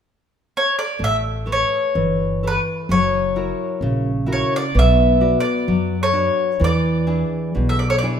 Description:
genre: fado-style ballad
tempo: 64 BPM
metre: 2/4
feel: rubato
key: A major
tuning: A4 = 438 Hz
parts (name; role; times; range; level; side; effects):
- mandolin; melody; 0.6-8.1 s; B4 to E5; -20 LUFS; left 1 dB; none
- nylon-string guitar; accompaniment; 1.0-8.2 s; B2 to D5; -21 LUFS; left 1 dB; none
- upright bass; bass; 1.0-8.2 s; F#1 to F#2; -21 LUFS; right 1 dB; none
room: moderate recital hall reverb, RT60 1.6 s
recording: minimal, uncompressed stereo recording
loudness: -16 LUFS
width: side -8 dB against mid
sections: 1.0-8.2 A section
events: none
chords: 0.0 N.C.; 1.0 Aadd9; 2.9 F#7; 4.7 Bm; 6.6 E7

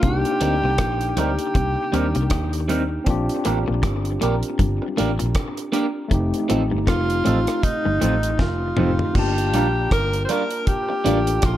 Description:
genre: lovers rock reggae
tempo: 79 BPM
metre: 4/4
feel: swing 58% on 16ths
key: Bb major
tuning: A4 = 440 Hz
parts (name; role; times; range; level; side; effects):
- warm tenor saxophone; melody; 0.0-11.6 s; Eb4 to C5; -24 LUFS; equal; tape echo
- tine electric piano; accompaniment; 0.0-11.6 s; A3 to A5; -26 LUFS; left 2 dB; medium stereo tremolo, tape echo
- twangy electric guitar; riff; 0.0-8.9 s; F2 to Eb3; -30 LUFS; left 4 dB; tape echo
- vintage muted fingered electric bass; bass; 0.0-11.6 s; F1 to Eb2; -24 LUFS; equal; none
- deep reggae drum kit; drums; 0.0-11.6 s; crash cymbal, hi-hat, kick drum, rim click, snare drum, toms; -24 LUFS; equal; gated reverb
- electric guitar at the edge of break-up; stabs; 0.4-11.2 s; F3 to Bb4; -26 LUFS; right 3 dB; phaser
room: moderate spring reverb, RT60 2.4 s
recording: none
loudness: -18 LUFS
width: side -12 dB against mid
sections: 0.0-9.2 A section; 9.2-11.6 B section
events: drum fill 8.4-9.2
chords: 0.0 Cm7; 3.1 Bb6; 6.1 F7; 9.2 Gm7

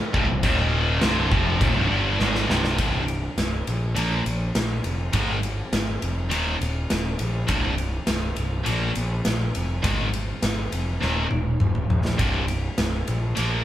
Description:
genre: hard rock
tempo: 102 BPM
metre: 4/4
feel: straight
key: C minor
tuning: A4 = 436 Hz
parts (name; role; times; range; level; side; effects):
- high-gain distorted guitar; riff; 0.1-13.6 s; C2 to Bb3; -25 LUFS; equal; distortion
- fuzz picked electric bass; bass; 0.1-13.6 s; C1 to Bb1; -26 LUFS; equal; overdrive
- big rock drum kit; drums; 0.1-13.5 s; crash cymbal, kick drum, ride cymbal, snare drum, toms; -25 LUFS; equal; none
room: light reverb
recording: band playing live in one room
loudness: -21 LUFS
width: side -12 dB against mid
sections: 0.0-2.8 A section; 2.8-13.6 B section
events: drum fill 2.2-2.8, 11.0-12.2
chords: 0.4 Eb5; 1.0 Cm; 2.8 C5; 4.0 Bb5; 5.1 Ab5; 6.3 Eb5; 7.5 C5; 8.7 Bb5; 9.8 Ab5; 11.0 Eb5; 12.2 C5

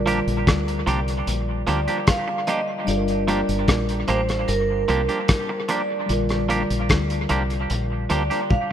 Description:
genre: lovers rock reggae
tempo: 75 BPM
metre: 4/4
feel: straight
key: unclear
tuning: A4 = 441 Hz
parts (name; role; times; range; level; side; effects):
- vibraphone with hard mallets; melody; 0.0-8.7 s; Bb4 to F5; -27 LUFS; right 3 dB; tape echo
- mellow tine electric piano; accompaniment; 0.0-8.7 s; D3 to Bb4; -27 LUFS; left 3 dB; medium stereo tremolo
- deep dub fingered electric bass; bass; 0.0-8.3 s; G1 to D2; -25 LUFS; left 1 dB; none
- twangy electric guitar; stabs; 0.1-8.4 s; F3 to G4; -26 LUFS; right 3 dB; dub echo
- cloth-damped thuddy drum kit; drums; 0.1-8.7 s; hi-hat, kick drum, rim click, toms; -23 LUFS; left 1 dB; dub echo
room: light reverb, studio ambience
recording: rough home demo mix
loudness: -20 LUFS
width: side -9 dB against mid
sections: 0.0-8.7 A section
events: drum fill 8.5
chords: 0.0 Bb6; 2.9 Gm7; 6.1 Bb6

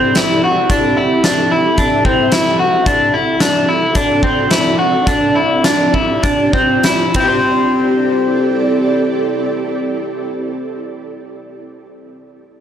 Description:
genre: dream pop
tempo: 94-111 BPM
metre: 4/4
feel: straight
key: C lydian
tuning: A4 = 437 Hz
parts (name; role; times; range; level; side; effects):
- ethereal airy pad; sustained chords; 0.0-11.5 s; C4 to E5; -19 LUFS; right 2 dB; ensemble chorus, built-in reverb, tremolo
- electric guitar at the edge of break-up; arpeggios; 0.0-11.7 s; C4 to C5; -14 LUFS; left 1 dB; lush chorus, analog delay
- huge arena drum kit; drums; 0.2-7.3 s; hi-hat, kick drum, ride cymbal, snare drum; -18 LUFS; equal; none
room: moderate concert hall reverb, RT60 2.1 s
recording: dry, gritty hardware recording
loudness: -12 LUFS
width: side -9 dB against mid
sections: 0.0-7.5 A section; 7.5-12.5 B section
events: slowing down 2.9-7.5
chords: 0.0 C69; 2.9 D7; 5.1 G7sus4; 7.1 C69

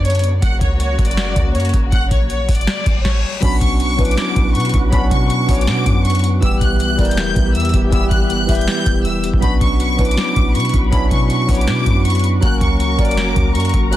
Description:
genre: hip hop, trap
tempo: 160 BPM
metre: 4/4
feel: half-time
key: B harmonic minor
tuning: A4 = 441 Hz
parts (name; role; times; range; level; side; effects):
- rich studio violin section; melody; 0.0-14.0 s; C#5 to G6; -22 LUFS; left 1 dB; none
- muted symphonic string section; sustained chords; 0.0-14.0 s; C#3 to B5; -28 LUFS; left 1 dB; none
- clean 808-style bass; bass; 0.0-13.9 s; E1 to B2; -18 LUFS; equal; none
- booming analog drum machine; drums; 0.0-14.0 s; crash cymbal, hi-hat, kick drum, snare drum; -17 LUFS; equal; overdrive
- reverse cymbal; sound effects; 2.8-3.4 s; none; -27 LUFS; left 5 dB; none
- tine electric piano; accompaniment; 3.4-14.0 s; E3 to A#4; -20 LUFS; equal; medium stereo tremolo
- polished pan flute; second line; 4.0-13.2 s; B4 to E5; -29 LUFS; left 5 dB; ping-pong delay
room: digital ambience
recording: dense, heavily limited modern master, vinyl crackle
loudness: -13 LUFS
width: side -14 dB against mid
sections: 0.0-3.4 A section; 3.4-14.0 B section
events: reverse cymbal 2.8-3.4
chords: 0.4 F#; 3.4 Bmadd9; 6.4 Em; 9.4 Bmadd9; 12.4 F#

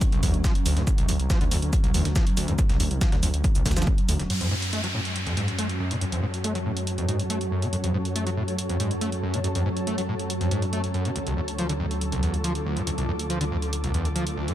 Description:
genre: driving peak-time techno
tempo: 140 BPM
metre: 4/4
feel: straight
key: F# harmonic minor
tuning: A4 = 440 Hz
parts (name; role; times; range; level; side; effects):
- swarming drone; drone; 0.0-14.5 s; F#3 to C#4; -34 LUFS; right 2 dB; built-in reverb, sidechain pumping
- breakbeat sampler-style drum kit; drums; 0.0-4.3 s; hi-hat, shaker, snare drum; -35 LUFS; right 1 dB; high-pass filter on perc, high-pass filter on snare, high-pass filter on hats, high-pass filter on room
- electronic kick drum; drums; 0.0-4.0 s; none; -22 LUFS; equal; none
- punchy analog drum machine; drums; 0.0-14.5 s; crash cymbal, hi-hat; -33 LUFS; right 1 dB; sidechain pumping on hats, sidechain pumping on cymbals
- screaming distorted acid line; riff; 0.1-14.5 s; D1 to A3; -28 LUFS; equal; distortion, analog chorus, sidechain pumping, ping-pong delay
- detuned saw bass; bass; 0.2-14.5 s; D1 to F#2; -29 LUFS; equal; sidechain pumping
- downlifter; sound effects; 4.3-7.7 s; none; -33 LUFS; equal; none
- granular cloud pad; texture; 5.3-14.5 s; F4 to D6; -33 LUFS; left 1 dB; built-in reverb, sidechain pumping
room: light reverb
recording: faint mains hum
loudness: -23 LUFS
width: side -12 dB against mid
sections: 0.0-4.3 A section; 4.3-14.5 B section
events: filter sweep on acid bass 4.3-14.5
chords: 0.0 Dm; 4.3 F#m; 11.2 Dm

